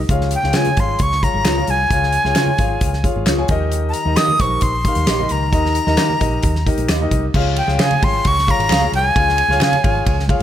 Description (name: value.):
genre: uptempo 1960s-style soul.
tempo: 132 BPM.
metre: 4/4.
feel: straight.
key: Db lydian.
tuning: A4 = 442 Hz.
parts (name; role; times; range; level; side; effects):
vintage muted fingered electric bass; bass; 0.0-10.4 s; Ab1 to Eb3; -20 LUFS; equal; none.
warm concert grand piano; accompaniment; 0.1-10.4 s; Db3 to Ab5; -23 LUFS; left 2 dB; none.
natural country drum kit; drums; 0.1-10.4 s; crash cymbal, hi-hat, kick drum, ride cymbal, snare drum; -20 LUFS; equal; none.
breathy bright jazz flute; melody; 0.3-10.3 s; G5 to Eb6; -18 LUFS; left 1 dB; none.
congas; percussion; 0.3-10.4 s; none; -32 LUFS; right 3 dB; none.
mellow electric guitar; stabs; 0.5-9.7 s; F4 to F5; -24 LUFS; right 3 dB; none.
finger snap; percussion; 0.5-9.7 s; none; -29 LUFS; left 3 dB; none.
room: light reverb.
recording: none.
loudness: -14 LUFS.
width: side -10 dB against mid.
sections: 0.0-7.3 A section; 7.3-10.4 A section.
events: none.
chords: 0.1 Db; 3.5 Eb; 7.3 Db.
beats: | 0.09 0.54 1.00 1.45 | 1.91 2.36 2.81 3.27 | 3.72 4.17 4.62 5.08 | 5.53 5.98 6.44 6.89 | 7.34 7.79 8.25 8.70 | 9.15 9.61 10.06.